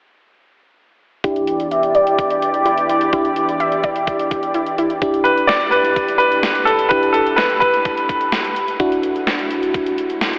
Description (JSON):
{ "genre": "synth-pop", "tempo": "127 BPM", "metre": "4/4", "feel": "straight", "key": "E minor", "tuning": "A4 = 440 Hz", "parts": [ { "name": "FM electric piano", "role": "accompaniment", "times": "1.2-10.4 s", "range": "D4 to G4", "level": "-24 LUFS", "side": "equal", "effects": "low-pass filter" }, { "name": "lush unison pad", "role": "sustained chords", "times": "1.2-5.0 s", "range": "E2 to D5", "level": "-23 LUFS", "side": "equal", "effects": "chorus, low-pass filter" }, { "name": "warbly dusty pluck", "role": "arpeggios", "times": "1.2-5.0 s", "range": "E4 to E5", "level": "-24 LUFS", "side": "equal", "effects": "chorus, phaser, low-pass filter, analog delay" }, { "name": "gated 80s digital drum machine", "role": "drums", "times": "1.2-10.4 s", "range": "hi-hat, kick drum, snare drum", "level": "-26 LUFS", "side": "equal", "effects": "gated reverb, gated reverb snare, overdrive" }, { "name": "bright grand piano", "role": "melody", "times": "5.2-8.5 s", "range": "A4 to D5", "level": "-19 LUFS", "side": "equal", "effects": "none" } ], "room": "wet huge ambient reverb, RT60 8.8 s", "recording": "dreamy mix soaked in reverb, telephone sound", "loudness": "-17 LUFS", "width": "mono", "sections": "1.2-5.0 A section; 5.0-10.4 B section", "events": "filter sweep 1.2-5.0", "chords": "1.2 Em7; 8.8 Dadd9" }